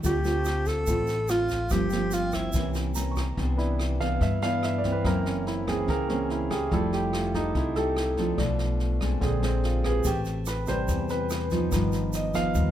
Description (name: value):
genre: bossa nova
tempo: 144 BPM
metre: 4/4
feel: straight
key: C major from 3.4 s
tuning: A4 = 439 Hz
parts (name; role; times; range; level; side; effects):
- clear concert grand piano; accompaniment; 0.0-12.7 s; C3 to Db6; -29 LUFS; right 2 dB; none
- nylon-string guitar; accompaniment; 0.0-12.7 s; F#2 to B4; -29 LUFS; equal; none
- upright bass; bass; 0.0-12.7 s; F1 to G2; -29 LUFS; equal; none
- jazz brush drum kit; drums; 0.0-12.6 s; kick drum, rim click, snare drum; -33 LUFS; equal; none
- egg shaker; percussion; 0.0-3.4, 10.0-12.7 s; none; -41 LUFS; right 6 dB; none
- breathy alto saxophone; melody; 0.1-2.8 s; E4 to A4; -29 LUFS; equal; plate reverb
room: light reverb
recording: none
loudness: -24 LUFS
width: side -11 dB against mid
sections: 0.0-3.4 A section; 3.4-12.7 B section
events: grand piano solo 3.4-12.7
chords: 0.0 Dm7; 1.7 Gm7; 2.5 C7b9; 3.4 Cmaj9; 5.0 F#7#11; 6.7 Fmaj9; 8.4 Bm7b5; 9.2 Bb9; 10.0 Am9; 11.7 G7b13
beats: | 0.04 0.46 0.87 1.29 | 1.71 2.12 2.54 2.96 | 3.38 3.79 4.21 4.63 | 5.04 5.46 5.88 6.29 | 6.71 7.13 7.55 7.96 | 8.38 8.80 9.21 9.63 | 10.05 10.47 10.88 11.30 | 11.72 12.13 12.55